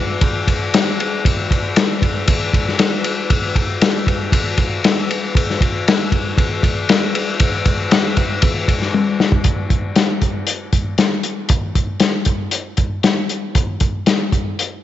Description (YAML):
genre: rock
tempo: 117 BPM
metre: 4/4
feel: straight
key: none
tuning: none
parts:
  - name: vintage drum kit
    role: drums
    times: 0.2-14.7 s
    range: hi-hat, kick drum, ride cymbal, snare drum, toms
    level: -15 LUFS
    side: left 1 dB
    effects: none
room: light reverb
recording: 1960s-style stereo, nothing above 7.8 kHz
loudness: -15 LUFS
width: side -12 dB against mid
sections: 0.0-9.4 A section; 9.4-14.8 B section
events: drum fill 8.9-9.4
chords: none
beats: 0.22 0.73 | 1.25 1.76 2.27 2.79 | 3.30 3.81 4.32 4.83 | 5.35 5.86 6.37 6.88 | 7.39 7.91 8.42 8.93 | 9.44 9.96 10.47 10.98 | 11.50 12.01 12.52 13.04 | 13.55 14.06 14.58